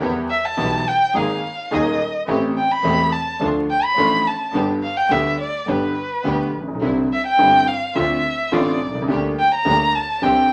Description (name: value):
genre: tango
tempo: 106 BPM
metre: 4/4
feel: rubato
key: unclear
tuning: A4 = 440 Hz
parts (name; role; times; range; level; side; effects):
- warm grand piano; accompaniment; 0.0-10.5 s; Eb1 to A4; -24 LUFS; equal; none
- rich studio string section; stabs; 0.0-10.5 s; A3 to Ab4; -32 LUFS; equal; none
- rich double bass; bass; 0.0-10.5 s; E1 to E2; -32 LUFS; equal; none
- rich violin; second line; 0.3-10.5 s; B4 to B5; -21 LUFS; equal; none
room: wet studio reverb, RT60 0.6 s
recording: vinyl crackle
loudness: -19 LUFS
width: mono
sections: 0.0-10.5 A section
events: violin solo 0.0-10.5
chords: 0.0 Em; 1.1 Absus2; 2.3 Am7; 3.4 Dm; 4.5 G; 6.8 Cadd9; 8.0 Dm7; 9.1 Gm/D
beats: | 0.01 0.58 1.15 1.72 | 2.28 2.85 3.41 3.97 | 4.54 5.11 5.68 6.25 | 6.82 7.39 7.96 8.53 | 9.10 9.66 10.23